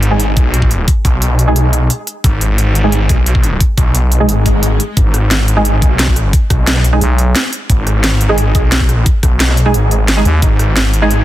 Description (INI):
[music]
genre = dark technical drum and bass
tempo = 176 BPM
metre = 4/4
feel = straight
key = G# minor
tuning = A4 = 440 Hz
[part]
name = snarling distorted saw bass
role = bass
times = 0.0-11.2 s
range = G#1 to B1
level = -12 LUFS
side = equal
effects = distortion, overdrive, sidechain pumping
[part]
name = drum and bass drum kit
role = drums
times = 0.0-11.2 s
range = hi-hat, rim click, snare drum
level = -17 LUFS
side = equal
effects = none
[part]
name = orchestra-hit-like synth stab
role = stabs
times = 0.1-11.1 s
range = G#3 to G#4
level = -17 LUFS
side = right 2 dB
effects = built-in reverb, digital delay
[part]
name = electronic kick drum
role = drums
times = 0.4-10.5 s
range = none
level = -12 LUFS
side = equal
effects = none
[part]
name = swell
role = sound effects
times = 4.4-5.0 s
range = none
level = -21 LUFS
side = left 5 dB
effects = none
[part]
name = growling FM bass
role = bass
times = 7.0-7.3, 10.3-10.4 s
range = B1 to D#2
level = -10 LUFS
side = equal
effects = tube saturation
[sound]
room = little or no reverb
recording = dense, heavily limited modern master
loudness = -10 LUFS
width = side -14 dB against mid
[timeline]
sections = 0.0-11.2 A section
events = filter sweep on synth stab 0.0-11.2; swell 4.4-5.0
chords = 0.0 G#m